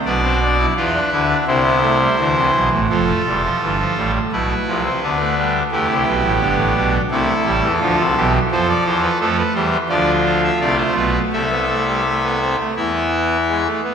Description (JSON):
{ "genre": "classical, baroque-style 4-part fugue for pipe organ", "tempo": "85 BPM", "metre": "4/4", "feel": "straight", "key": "F major, A minor from 8.5 s", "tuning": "A4 = 439 Hz", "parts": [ { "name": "pipe organ, trumpet", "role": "solo", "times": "0.1-13.9 s", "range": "E1 to E5", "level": "-15 LUFS", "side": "equal", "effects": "none" } ], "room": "wet scoring stage reverb, RT60 1.6 s", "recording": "none", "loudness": "-15 LUFS", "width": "side -7 dB against mid", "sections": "0.0-2.9 A section; 2.9-13.9 B section", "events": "none", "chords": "0.1 Bmadd11; 1.5 C; 2.9 Fmaj7; 4.3 Bm; 5.7 Em7; 7.1 Am; 8.5 F; 9.9 Dm; 11.3 Am/C; 12.8 E" }